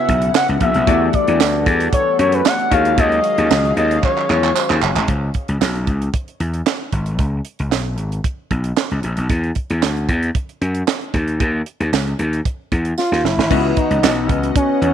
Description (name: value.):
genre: early-eighties boogie funk.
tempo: 114 BPM.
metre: 4/4.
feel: straight.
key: unclear.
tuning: A4 = 440 Hz.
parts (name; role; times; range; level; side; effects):
expressive portamento lead; melody; 0.0-4.8, 13.0-14.9 s; C#4 to F#5; -18 LUFS; left 1 dB; chorus, tape echo.
funky polysynth comp; accompaniment; 0.0-5.0, 13.5-14.9 s; E3 to E5; -24 LUFS; left 13 dB; chorus.
lush unison pad; sustained chords; 0.0-5.1, 13.5-14.9 s; C#3 to F#5; -25 LUFS; equal; chorus.
gritty slap bass; bass; 0.1-14.9 s; F#1 to F#2; -18 LUFS; left 1 dB; overdrive.
tight funk drum kit; drums; 0.1-14.9 s; crash cymbal, handclaps, hi-hat, kick drum, snare drum; -19 LUFS; right 4 dB; none.
tambourine; percussion; 0.3-14.2 s; none; -32 LUFS; right 15 dB; none.
room: light reverb, small room ambience.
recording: 1960s-style stereo with parts hard left and right.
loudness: -15 LUFS.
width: side -9 dB against mid.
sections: 0.0-5.1 A section; 5.1-13.5 B section; 13.5-14.9 A section.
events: drum fill 4.0-5.1, 13.0-13.5.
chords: 0.0 C#m7; 0.9 Em11; 2.7 D#m11; 5.1 C#7(no3); 9.3 Esus2; 11.1 N.C.; 13.5 C#m11.